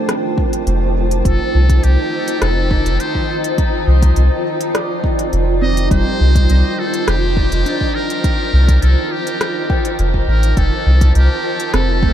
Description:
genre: ambient dub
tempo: 103 BPM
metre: 4/4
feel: straight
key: F mixolydian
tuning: A4 = 439 Hz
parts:
  - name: granular cloud pad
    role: sustained chords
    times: 0.0-12.1 s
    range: F4 to A5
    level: -22 LUFS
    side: equal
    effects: built-in reverb
  - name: handpan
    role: arpeggios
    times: 0.0-12.1 s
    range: G3 to G5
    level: -26 LUFS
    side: right 3 dB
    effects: diffuse ambient delay
  - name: bubbling stepped-filter texture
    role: texture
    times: 0.0-12.1 s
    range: Eb3 to D6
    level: -26 LUFS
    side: right 1 dB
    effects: chorus, built-in reverb
  - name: organic electronic drum kit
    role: drums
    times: 0.1-11.9 s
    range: hi-hat, rim click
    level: -26 LUFS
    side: left 1 dB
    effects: none
  - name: electronic kick drum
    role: drums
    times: 0.4-12.1 s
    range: none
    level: -18 LUFS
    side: equal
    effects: none
  - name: soft dub sub bass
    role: bass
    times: 0.7-12.1 s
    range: F1 to C2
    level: -13 LUFS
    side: equal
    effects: none
  - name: trumpet with metal mute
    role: melody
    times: 1.3-12.1 s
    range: G4 to Eb5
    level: -23 LUFS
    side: left 1 dB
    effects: diffuse ambient delay
room: light reverb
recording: none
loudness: -13 LUFS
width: side -11 dB against mid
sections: 0.0-12.1 A section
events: none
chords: 0.0 F9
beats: 0.09 0.67 | 1.25 1.83 2.42 3.00 | 3.58 4.16 4.75 5.33 | 5.91 6.49 7.08 7.66 | 8.24 8.82 9.41 9.99 | 10.57 11.15 11.74

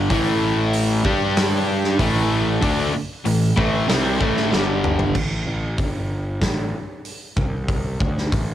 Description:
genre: hard rock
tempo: 95 BPM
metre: 4/4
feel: straight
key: unclear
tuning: A4 = 439 Hz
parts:
  - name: cranked stack guitar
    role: riff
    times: 0.0-5.1 s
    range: G2 to G4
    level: -22 LUFS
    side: left 6 dB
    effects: overdrive
  - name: crunchy overdriven guitar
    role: riff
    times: 0.0-5.1 s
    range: G2 to G4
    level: -26 LUFS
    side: right 1 dB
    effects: none
  - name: distorted electric guitar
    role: riff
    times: 0.0-5.1 s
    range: G2 to G4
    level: -24 LUFS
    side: right 7 dB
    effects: distortion
  - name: fuzz picked electric bass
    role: bass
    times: 0.0-8.5 s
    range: G1 to G2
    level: -24 LUFS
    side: equal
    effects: overdrive
  - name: huge arena drum kit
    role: drums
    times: 0.1-8.5 s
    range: crash cymbal, hi-hat, kick drum, snare drum, toms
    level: -24 LUFS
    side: equal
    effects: none
room: light reverb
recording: home recording on cassette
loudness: -18 LUFS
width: side -11 dB against mid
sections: 0.0-5.2 A section; 5.2-8.5 B section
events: drum fill 4.5-5.2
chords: 0.1 A5; 1.0 G5; 2.0 A5; 4.5 G5; 5.2 N.C.; 8.0 Asus4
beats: | 0.09 0.72 1.36 1.99 | 2.62 3.25 3.88 4.52 | 5.15 5.78 6.42 7.05 | 7.69 8.32

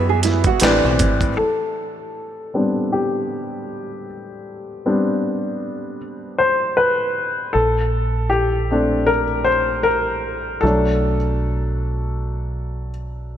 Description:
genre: R&B, neo-soul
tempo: 78 BPM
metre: 4/4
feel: swing 58% on 16ths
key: A dorian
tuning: A4 = 440 Hz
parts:
  - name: nylon-string guitar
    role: second line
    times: 0.0-1.4 s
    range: C4 to G#4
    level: -22 LUFS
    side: right 10 dB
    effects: analog chorus
  - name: warm upright piano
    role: accompaniment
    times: 0.0-13.4 s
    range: A2 to E5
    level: -19 LUFS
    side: left 2 dB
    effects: low-pass filter
  - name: deep dub fingered electric bass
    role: bass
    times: 0.0-1.3, 7.6-13.4 s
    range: G#1 to F#2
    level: -22 LUFS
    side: right 1 dB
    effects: none
  - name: dusty soul sampler-style drum kit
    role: drums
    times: 0.2-1.4 s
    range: handclaps, hi-hat, kick drum, snare drum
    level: -20 LUFS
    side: right 2 dB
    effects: overdrive, gated reverb
room: moderate lush hall reverb, RT60 2.7 s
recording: bright 1980s-style digital production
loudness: -17 LUFS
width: side -10 dB against mid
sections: 0.0-1.4 A section; 1.4-13.4 B section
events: upright piano solo 1.4-13.4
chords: 0.0 E9; 0.6 Am11; 7.5 Bbmaj7; 10.6 Bm7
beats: 0.62 | 1.39 2.16 2.92 3.69 | 4.46 5.23 6.00 6.77 | 7.54 8.31 9.08 9.85 | 10.62 11.39 12.16 12.93

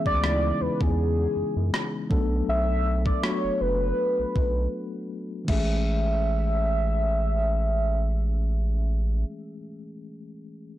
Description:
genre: contemporary R&B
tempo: 80 BPM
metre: 4/4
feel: swing 54% on 16ths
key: A major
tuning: A4 = 440 Hz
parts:
  - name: warm velvety synth lead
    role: melody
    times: 0.0-9.2 s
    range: G#4 to E5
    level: -28 LUFS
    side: equal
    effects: chorus, digital delay
  - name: mellow tine electric piano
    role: accompaniment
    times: 0.0-10.8 s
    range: C#3 to A4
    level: -31 LUFS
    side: left 2 dB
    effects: medium stereo tremolo
  - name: round analog bass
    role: bass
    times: 0.1-9.2 s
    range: F#1 to F#2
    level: -25 LUFS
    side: equal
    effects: none
  - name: gated 80s digital drum machine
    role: drums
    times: 0.1-5.7 s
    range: crash cymbal, kick drum, rim click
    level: -28 LUFS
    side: equal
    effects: none
room: little or no reverb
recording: blown-out, overdriven recording, overdrive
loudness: -23 LUFS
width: side -14 dB against mid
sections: 0.0-5.5 A section; 5.5-8.5 B section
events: break 4.7-5.5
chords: 0.0 C#m7; 2.1 Bm7; 5.5 Amaj7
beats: 0.23 0.98 1.73 | 2.48 3.23 3.98 4.73 | 5.48 6.23 6.98 7.73

